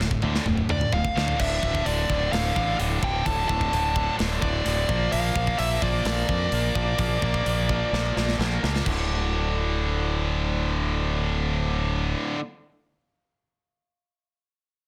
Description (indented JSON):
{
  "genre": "heavy metal",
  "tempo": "128 BPM",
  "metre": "4/4",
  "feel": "straight",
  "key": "D minor",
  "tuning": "A4 = 442 Hz",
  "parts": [
    { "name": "heavy high-gain guitar", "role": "riff", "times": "0.0-12.4 s", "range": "D2 to Bb3", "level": "-29 LUFS", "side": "equal", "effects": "distortion" },
    { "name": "growling fingered electric bass", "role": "bass", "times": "0.0-12.1 s", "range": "D1 to F2", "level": "-29 LUFS", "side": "equal", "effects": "overdrive" },
    { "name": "tight metal drum kit", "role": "drums", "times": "0.0-9.0 s", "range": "crash cymbal, hi-hat, kick drum, snare drum, toms", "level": "-32 LUFS", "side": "equal", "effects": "soft clipping on kick" },
    { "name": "high-gain lead guitar", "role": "melody", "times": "0.7-8.4 s", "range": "D5 to A5", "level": "-30 LUFS", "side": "equal", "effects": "distortion, digital delay" }
  ],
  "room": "light reverb",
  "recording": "dense, heavily limited modern master",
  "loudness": "-25 LUFS",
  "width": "mono",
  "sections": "0.0-1.4 A section; 1.4-8.9 B section; 8.9-12.6 C section",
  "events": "drum fill 0.0-1.4, 7.9-8.9",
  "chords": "0.0 Dm; 1.4 D5; 4.9 Bb; 8.9 D5",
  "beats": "0.46 0.92 | 1.39 1.85 2.32 2.79 | 3.25 3.72 4.19 4.65 | 5.12 5.59 6.05 6.52 | 6.99 7.46 7.92 8.39 | 8.86 9.32 9.79 10.26 | 10.73 11.19 11.66 12.13"
}